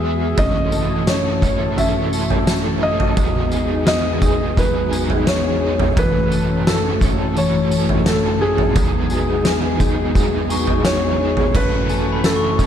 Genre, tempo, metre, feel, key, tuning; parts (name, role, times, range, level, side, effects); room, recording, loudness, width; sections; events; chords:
dream pop; 86 BPM; 4/4; straight; A4 = 440 Hz
felt-muted upright piano; melody; 0.0-12.7 s; G#4 to E5; -23 LUFS; equal; tape echo, shimmer reverb
overdriven semi-hollow guitar; accompaniment; 0.0-12.7 s; F#2 to A4; -25 LUFS; right 4 dB; tremolo, ensemble chorus, shimmer reverb
mellow tonewheel organ; sustained chords; 0.0-12.7 s; E2 to F#4; -23 LUFS; right 1 dB; chorus vibrato, fast rotary speaker
mellow electric guitar; arpeggios; 0.0-12.7 s; E3 to A4; -23 LUFS; left 4 dB; ensemble chorus, tape echo, shimmer reverb
glockenspiel with hard plastic mallets; texture; 0.0, 10.5-12.7 s; G#5 to C#6; -30 LUFS; left 5 dB; tape echo, shimmer reverb
oversized low-tuned drum kit; drums; 0.4-12.7 s; crash cymbal, kick drum, snare drum, tambourine, toms; -19 LUFS; equal
light reverb, studio reverb; dark, warm production; -15 LUFS; side -9 dB against mid
0.0-11.5 A section; 11.5-12.7 B section
0.4 F#m7; 3.2 Emaj9; 6.0 F#m7; 8.8 Emaj9; 11.5 F#m7